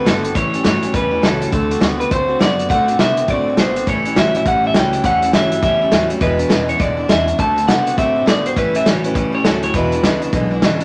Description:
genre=rockabilly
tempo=204 BPM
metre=4/4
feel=swing 62% on 8ths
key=A mixolydian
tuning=A4 = 437 Hz
part: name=electric guitar through a small old amp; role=melody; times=0.0-10.6 s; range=A4 to A5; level=-20 LUFS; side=equal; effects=none
part: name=picked steel-string acoustic guitar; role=accompaniment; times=0.0-10.8 s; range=E2 to F#4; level=-24 LUFS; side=equal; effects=none
part: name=electric guitar through a small old amp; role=riff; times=0.0-10.8 s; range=E2 to C4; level=-25 LUFS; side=equal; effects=none
part: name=upright bass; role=bass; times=0.1-10.8 s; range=E1 to C3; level=-29 LUFS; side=equal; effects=none
part: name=vintage drum kit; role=drums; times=0.1-10.8 s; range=hi-hat, kick drum, snare drum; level=-20 LUFS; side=equal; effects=none
room=moderate studio reverb, RT60 0.8 s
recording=nothing above 10.6 kHz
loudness=-16 LUFS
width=mono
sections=0.0-10.8 A section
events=none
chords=0.3 A7; 1.5 D7; 3.9 A7; 6.2 E7; 7.4 D7; 8.6 A7; 9.7 E7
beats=0.05 | 0.35 0.64 0.93 1.23 | 1.52 1.81 2.11 2.40 | 2.69 2.99 3.28 3.57 | 3.87 4.16 4.45 4.75 | 5.04 5.33 5.63 5.92 | 6.21 6.51 6.80 7.09 | 7.39 7.68 7.97 8.27 | 8.56 8.86 9.15 9.44 | 9.73 10.03 10.32 10.62

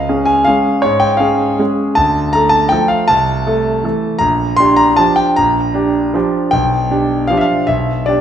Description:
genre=classical, piano waltz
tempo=157 BPM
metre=3/4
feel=uneven beats, rubato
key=unclear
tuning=A4 = 440 Hz
part: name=clear concert grand piano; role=solo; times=0.0-8.2 s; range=Bb1 to C6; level=-11 LUFS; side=equal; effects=none
room=wet scoring stage reverb, RT60 2.0 s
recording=recorded in a church or concert hall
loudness=-11 LUFS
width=side -9 dB against mid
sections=0.0-8.2 A section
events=none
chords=0.0 Db; 2.0 Dm; 3.1 Am/C; 4.2 Gm7/Bb; 6.5 G7/B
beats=0.07 0.45 | 0.83 1.21 1.60 | 1.97 2.34 2.71 | 3.08 3.45 3.84 | 4.22 4.59 4.99 | 5.38 5.76 6.15 | 6.54 6.92 7.31 | 7.70 8.10

